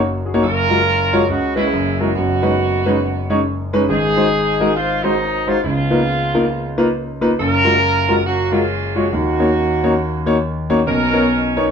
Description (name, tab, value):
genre	gospel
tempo	138 BPM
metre	4/4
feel	swing 62% on 8ths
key	F# major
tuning	A4 = 440 Hz
part	warm horn section	melody	0.0-11.7 s	F#3 to A#4	-18 LUFS	right 2 dB	none
part	clear concert grand piano	accompaniment	0.0-11.7 s	F#1 to C#5	-16 LUFS	left 1 dB	none
room	wet studio reverb, RT60 0.8 s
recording	band playing live in one room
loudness	-14 LUFS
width	side -7 dB against mid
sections	0.4-11.7 A section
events	none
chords	0.4 F#maj9; 1.3 C#m7; 1.7 F#9; 2.2 B69/F#; 3.9 G#7; 5.6 C#13; 7.4 F#maj9; 9.1 D#m7; 10.9 Bmaj9